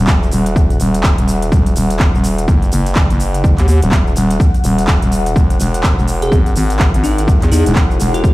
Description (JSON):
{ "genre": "bass house", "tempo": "125 BPM", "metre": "4/4", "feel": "swing 61% on 16ths", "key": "Eb phrygian", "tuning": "A4 = 439 Hz", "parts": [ { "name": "growling FM bass", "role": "bass", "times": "0.0-8.3 s", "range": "Eb1 to E2", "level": "-15 LUFS", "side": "equal", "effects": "overdrive, sidechain pumping" }, { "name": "granular cloud pad", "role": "texture", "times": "0.0-8.3 s", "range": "E4 to Gb5", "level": "-26 LUFS", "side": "left 2 dB", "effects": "built-in reverb, sidechain pumping" }, { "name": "big-room dance drum kit", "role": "drums", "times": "0.1-8.3 s", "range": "cabasa, handclaps, hi-hat", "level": "-22 LUFS", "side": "right 1 dB", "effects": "none" }, { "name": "electronic kick drum", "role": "drums", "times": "0.1-8.3 s", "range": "none", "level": "-13 LUFS", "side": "equal", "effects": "overdrive" }, { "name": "bell-like FM electric piano", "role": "melody", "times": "6.2-8.3 s", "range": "Eb4 to G#4", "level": "-21 LUFS", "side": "left 2 dB", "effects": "chorus, dub echo" } ], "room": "digital ambience", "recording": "played on a big sound system in a bare room, large studio reverb", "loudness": "-11 LUFS", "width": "side -18 dB against mid", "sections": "0.0-8.3 A section", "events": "none", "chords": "0.0 Ebm; 5.4 Eadd9" }